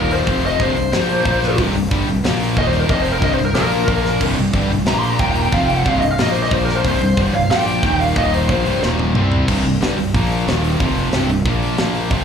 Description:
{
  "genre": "heavy metal",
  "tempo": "182 BPM",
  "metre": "4/4",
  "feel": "straight",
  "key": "C minor",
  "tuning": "A4 = 440 Hz",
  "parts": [
    { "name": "bluesy overdriven lead guitar", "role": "melody", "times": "0.0-8.8 s", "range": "Bb4 to C6", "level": "-19 LUFS", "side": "left 1 dB", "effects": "distortion" },
    { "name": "distorted electric guitar", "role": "riff", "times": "0.0-12.2 s", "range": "C2 to C4", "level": "-25 LUFS", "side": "right 12 dB", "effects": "overdrive, slapback echo" },
    { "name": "distorted electric guitar", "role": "riff", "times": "0.0-12.2 s", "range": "C2 to C4", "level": "-23 LUFS", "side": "equal", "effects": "distortion" },
    { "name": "high-gain distorted guitar", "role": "riff", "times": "0.0-12.2 s", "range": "C2 to C4", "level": "-23 LUFS", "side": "left 9 dB", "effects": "distortion, slapback echo" },
    { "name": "fuzz fingered electric bass", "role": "bass", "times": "0.0-12.2 s", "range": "C1 to C2", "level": "-21 LUFS", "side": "equal", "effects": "overdrive" },
    { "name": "tight metal drum kit", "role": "drums", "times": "0.1-12.2 s", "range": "crash cymbal, hi-hat, kick drum, snare drum, toms", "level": "-22 LUFS", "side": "equal", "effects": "none" }
  ],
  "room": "light reverb",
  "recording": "live gig heard through the venue's PA, club reverb",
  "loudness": "-14 LUFS",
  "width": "side -7 dB against mid",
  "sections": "0.0-9.5 A section; 9.5-12.2 B section",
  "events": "half time 0.0-9.5; lead electric guitar solo 0.0-9.5; drum fill 8.8-9.5",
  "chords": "0.3 F5; 0.6 C5; 0.9 Bb5; 1.6 C5; 2.2 Bb5; 2.6 Eb5; 2.9 F5; 3.2 C5; 3.6 Bb5; 4.2 C5; 4.9 Bb5; 5.2 Eb5; 5.5 F5; 5.9 C5; 6.2 Bb5; 6.8 C5; 7.5 Bb5; 7.8 Eb5; 8.5 C5; 8.8 Eb5; 9.1 C5; 10.1 Bb5; 10.5 Eb5; 10.8 F5; 11.1 C5; 11.5 Bb5",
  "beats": "| 0.27 0.60 0.93 1.25 | 1.58 1.91 2.24 2.57 | 2.90 3.23 3.55 3.88 | 4.21 4.54 4.87 5.20 | 5.53 5.86 6.18 6.51 | 6.84 7.17 7.50 7.83 | 8.16 8.49 8.82 9.15 | 9.48 9.81 10.14 10.47 | 10.80 11.13 11.46 11.79 | 12.12"
}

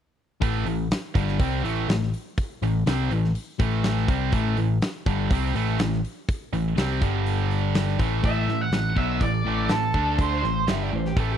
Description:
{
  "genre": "classic rock",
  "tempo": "123 BPM",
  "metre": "4/4",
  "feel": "straight",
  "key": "A minor",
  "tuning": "A4 = 439 Hz",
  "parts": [
    { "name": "sludgy distorted guitar", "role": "riff", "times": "0.4-11.4 s", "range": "G2 to D4", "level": "-28 LUFS", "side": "left 11 dB", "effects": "overdrive" },
    { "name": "tight distorted guitar", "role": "riff", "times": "0.4-11.4 s", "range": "G2 to D4", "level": "-29 LUFS", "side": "right 13 dB", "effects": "distortion" },
    { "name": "overdriven picked electric bass", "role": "bass", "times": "0.4-11.4 s", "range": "G1 to D2", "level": "-26 LUFS", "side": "equal", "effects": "none" },
    { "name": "big rock drum kit", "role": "drums", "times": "0.4-11.3 s", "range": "hi-hat, kick drum, snare drum", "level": "-26 LUFS", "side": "equal", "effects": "none" },
    { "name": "octave-fuzz lead guitar", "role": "melody", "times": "8.3-10.7 s", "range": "A4 to F#5", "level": "-27 LUFS", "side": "right 3 dB", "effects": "distortion, slapback echo" },
    { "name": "raw garage guitar", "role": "second line", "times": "10.7-11.4 s", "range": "G4 to E5", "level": "-33 LUFS", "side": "left 2 dB", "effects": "overdrive" }
  ],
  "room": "small room ambience",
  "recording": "dry, close 1970s-style studio recording",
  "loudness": "-22 LUFS",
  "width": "side -9 dB against mid",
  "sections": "0.4-8.2 A section; 8.2-11.4 B section",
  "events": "none",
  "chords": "0.4 Am; 7.0 G5; 8.0 A5; 9.9 D5; 10.4 A5",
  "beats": "| 0.42 0.91 1.40 1.89 | 2.38 2.87 3.36 3.84 | 4.33 4.82 5.31 5.80 | 6.28 6.77 7.26 7.75 | 8.24 8.72 9.21 9.70 | 10.19 10.68 11.17"
}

